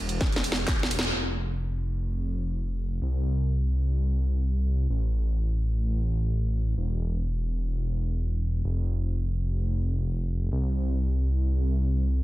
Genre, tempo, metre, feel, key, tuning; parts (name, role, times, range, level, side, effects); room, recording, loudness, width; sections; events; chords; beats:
EDM, festival progressive house; free time; C major; A4 = 441 Hz
wide detuned saw bass; bass; 0.0-12.2 s; E1 to C2; -25 LUFS; equal; chorus, sidechain pumping
house drum kit; drums; 0.1-1.2 s; crash cymbal, handclaps, hi-hat, ride cymbal, snare drum; -27 LUFS; equal; low-pass filter on snare, low-pass filter on hats, low-pass filter on cymbals, low-pass filter on room
electronic kick drum; drums; 0.2-0.8 s; -28 LUFS; equal
little or no reverb; dense, heavily limited modern master; -25 LUFS; side -17 dB against mid
0.0-1.1 A section; 1.1-12.2 B section
drop 0.0-1.1; drum fill 0.2-1.1; band accent 1.0
free time